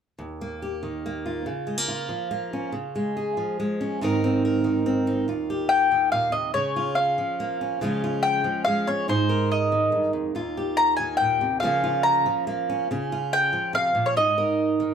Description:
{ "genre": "folk", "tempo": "142 BPM", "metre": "3/4", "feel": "straight", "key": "Eb mixolydian", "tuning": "A4 = 440 Hz", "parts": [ { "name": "fingerpicked steel-string acoustic guitar", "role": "accompaniment", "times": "0.2-14.9 s", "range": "Eb2 to Bb4", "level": "-25 LUFS", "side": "right 2 dB", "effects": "none" }, { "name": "mandolin", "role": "melody", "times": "5.7-14.9 s", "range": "C5 to Bb5", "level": "-21 LUFS", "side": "left 2 dB", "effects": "none" } ], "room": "light reverb", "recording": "band playing live in one room", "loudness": "-22 LUFS", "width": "side -7 dB against mid", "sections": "0.2-5.3 A section; 5.3-14.9 B section", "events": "none", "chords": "0.2 Ebadd9; 1.5 Bbm/Db; 2.7 Db; 4.0 Abadd9; 5.3 Ebadd9; 6.5 Bbm/Db; 7.8 Db; 9.1 Abadd9; 10.4 Ebadd9; 11.6 Bbm/Db; 12.9 Db; 14.2 Absus2" }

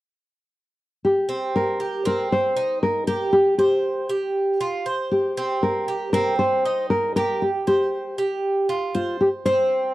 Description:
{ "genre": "latin", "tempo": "118 BPM", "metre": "4/4", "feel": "straight", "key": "C minor", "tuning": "A4 = 440 Hz", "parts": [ { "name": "nylon-string guitar", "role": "melody", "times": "1.0-9.9 s", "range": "F4 to C5", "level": "-21 LUFS", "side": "left 1 dB", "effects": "none" }, { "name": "Cuban tres", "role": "arpeggios", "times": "1.3-9.9 s", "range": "C4 to C5", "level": "-25 LUFS", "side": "right 3 dB", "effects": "none" } ], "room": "light reverb, small room ambience", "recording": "dry, close 1970s-style studio recording", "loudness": "-20 LUFS", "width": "side -16 dB against mid", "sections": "0.0-1.3 A section; 1.3-9.9 B section", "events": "none", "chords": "0.0 N.C.; 1.3 Cm7; 3.3 G7sus4; 5.4 Cm7; 7.4 G7sus4" }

